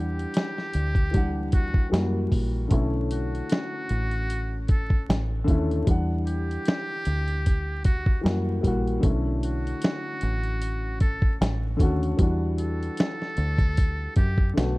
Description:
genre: lo-fi hip hop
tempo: 76 BPM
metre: 4/4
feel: swing 56% on 16ths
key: B minor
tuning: A4 = 440 Hz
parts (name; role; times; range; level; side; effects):
- trumpet with metal mute; melody; 0.0-14.5 s; F#4 to A4; -34 LUFS; equal; low-pass filter
- dark upright piano; accompaniment; 0.0-14.8 s; D3 to F#5; -30 LUFS; left 1 dB; cassette tape, low-pass filter
- deep dub fingered electric bass; bass; 0.0-14.8 s; A1 to F#2; -27 LUFS; equal; none
- dusty soul sampler-style drum kit; drums; 0.2-14.8 s; hi-hat, kick drum, snare drum; -23 LUFS; equal; none
room: studio ambience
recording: dark, warm production, vinyl crackle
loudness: -22 LUFS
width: side -22 dB against mid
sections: 0.0-14.8 A section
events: none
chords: 0.0 Em9; 1.9 F#7b9; 2.7 Bm11; 5.9 Em9; 8.2 F#7b9; 9.0 Bm11; 12.2 Em9

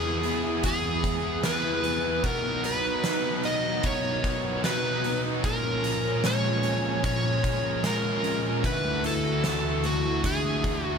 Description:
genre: dream pop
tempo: 75 BPM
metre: 4/4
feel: straight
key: E lydian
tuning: A4 = 440 Hz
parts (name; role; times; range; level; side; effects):
- overdriven slide guitar; melody; 0.0-11.0 s; F#4 to D#5; -29 LUFS; equal; tape echo
- overdriven electric guitar; accompaniment; 0.0-11.0 s; A#2 to A#4; -32 LUFS; right 2 dB; tremolo, wide subtle chorus
- phased analog pad; sustained chords; 0.0-11.0 s; D2 to A#5; -31 LUFS; equal; phaser, chorus
- mellow electric guitar; arpeggios; 0.0-11.0 s; A#2 to A#4; -32 LUFS; left 2 dB; wide subtle chorus, tape echo
- oversized low-tuned drum kit; drums; 0.2-10.8 s; hi-hat, kick drum, snare drum; -31 LUFS; equal; none
room: light reverb, small room ambience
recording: none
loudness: -24 LUFS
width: side -6 dB against mid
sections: 0.0-11.0 A section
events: none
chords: 0.0 E; 2.2 Bmaj7; 5.4 A#m7; 8.6 Dadd9

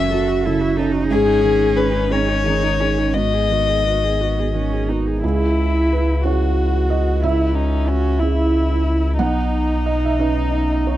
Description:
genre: neoclassical piano and strings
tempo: 60 BPM (dotted quarters)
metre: 6/8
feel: rubato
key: C# minor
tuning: A4 = 439 Hz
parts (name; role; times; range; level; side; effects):
- dark violin; melody; 0.0-11.0 s; C#4 to E5; -22 LUFS; left 6 dB; none
- dark cello; second line; 0.0-11.0 s; B3 to F#4; -24 LUFS; right 5 dB; none
- felt-muted upright piano; accompaniment; 0.0-11.0 s; B1 to F#5; -22 LUFS; right 4 dB; none
- warm viola; accompaniment; 0.0-5.2 s; D#4 to A4; -28 LUFS; right 2 dB; none
- pure sine sub bass; bass; 0.0-11.0 s; F#1 to C#2; -21 LUFS; equal; none
room: little or no reverb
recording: dry, close 1970s-style studio recording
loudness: -16 LUFS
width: side -13 dB against mid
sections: 0.0-5.2 A section; 5.2-11.0 B section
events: none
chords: 0.0 F#m7; 1.1 G#sus4; 3.1 G#m7; 5.2 C#m; 9.2 Badd9

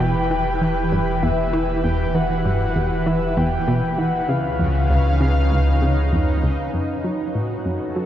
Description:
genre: ambient, sequencer-driven space music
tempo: 98 BPM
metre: 4/4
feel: straight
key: E dorian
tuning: A4 = 440 Hz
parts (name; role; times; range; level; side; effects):
- soft octave-layered synth lead; melody; 0.0-6.4 s; E5 to G5; -26 LUFS; left 1 dB; chorus, phaser, cassette tape, tape echo
- lush unison pad; sustained chords; 0.0-8.1 s; C#3 to B5; -24 LUFS; equal; chorus
- plucky analog bass; riff; 0.0-8.1 s; C#2 to F#3; -23 LUFS; equal; tape echo
- warm sub bass; bass; 0.0-6.7 s; E1 to C#2; -22 LUFS; equal; none
- wind-like tuned noise texture; texture; 0.0-8.1 s; B4; -32 LUFS; equal; built-in reverb
room: wet cathedral reverb, RT60 6.1 s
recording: dreamy mix soaked in reverb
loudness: -18 LUFS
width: side -11 dB against mid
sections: 0.0-6.7 A section; 6.7-8.1 B section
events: none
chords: 0.0 Em; 4.3 C#7; 6.7 F#m

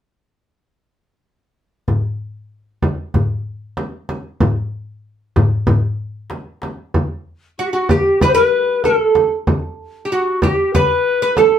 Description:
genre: Arabic maqam ensemble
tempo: 95 BPM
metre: 4/4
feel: straight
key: unclear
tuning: A4 = 440 Hz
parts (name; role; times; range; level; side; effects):
- darbuka; percussion; 1.9-6.8 s; none; -20 LUFS; left 2 dB; none
- frame drum; percussion; 1.9-11.5 s; none; -18 LUFS; right 1 dB; none
- bright reedy polished pan flute; melody; 7.6-11.6 s; F#4 to C5; -15 LUFS; equal; none
- oud; second line; 7.6-11.6 s; F#4 to B4; -19 LUFS; right 2 dB; none
room: wet studio ambience, RT60 0.5 s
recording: band playing live in one room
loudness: -15 LUFS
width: side -9 dB against mid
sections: 1.9-6.9 A section; 6.9-11.6 B section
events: none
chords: none

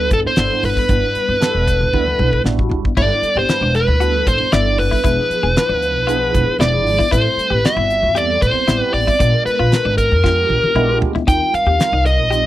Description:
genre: electric jazz fusion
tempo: 116 BPM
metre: 4/4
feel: straight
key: G major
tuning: A4 = 440 Hz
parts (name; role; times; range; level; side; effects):
- dark smooth lead guitar; melody; 0.0-12.5 s; A4 to G5; -16 LUFS; equal; overdrive, slapback echo
- barky tine electric piano; accompaniment; 0.0-12.5 s; F3 to B4; -23 LUFS; right 1 dB; medium stereo tremolo, phaser
- upright bass; bass; 0.0-12.5 s; E1 to F2; -19 LUFS; equal; none
- damped 70s drum kit; drums; 0.1-12.4 s; crash cymbal, hi-hat, kick drum, snare drum, toms; -19 LUFS; equal; none
- clean electric guitar; stabs; 3.0-12.5 s; D4 to G#4; -25 LUFS; left 6 dB; wide subtle chorus
room: light reverb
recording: dry, close 1970s-style studio recording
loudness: -13 LUFS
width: side -14 dB against mid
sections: 0.0-3.0 A section; 3.0-12.5 A section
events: drum fill 1.9-3.0, 10.2-11.3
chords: 0.0 G69; 5.0 E7b9; 7.1 Am9; 9.2 Bb7b9; 11.3 Eb6

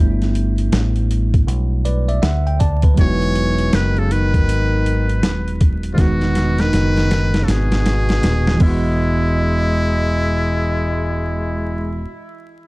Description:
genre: hip hop, jazz-hop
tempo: 80 BPM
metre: 4/4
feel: swing 63% on 16ths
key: E major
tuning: A4 = 440 Hz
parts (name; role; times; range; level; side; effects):
- bell-like tine electric piano; accompaniment; 0.0-12.1 s; D#3 to A5; -22 LUFS; right 2 dB; fast stereo tremolo
- deep dub picked electric bass; bass; 0.0-12.0 s; D#1 to D2; -18 LUFS; equal; none
- boom bap sampler-style drum kit; drums; 0.2-8.8 s; crash cymbal, hi-hat, kick drum, snare drum; -18 LUFS; equal; none
- trumpet with metal mute; melody; 3.0-12.1 s; E4 to C#5; -24 LUFS; equal; analog delay
- breathy tenor saxophone; second line; 3.0-12.1 s; G#2 to G#3; -25 LUFS; left 2 dB; none
room: digital ambience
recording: dark, warm production, vinyl crackle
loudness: -15 LUFS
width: side -22 dB against mid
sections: 0.0-9.0 A section; 9.0-12.0 B section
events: tine electric piano fill 1.5-3.0; drum fill 6.0-9.0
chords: 0.0 Gadd9; 3.0 Emaj9

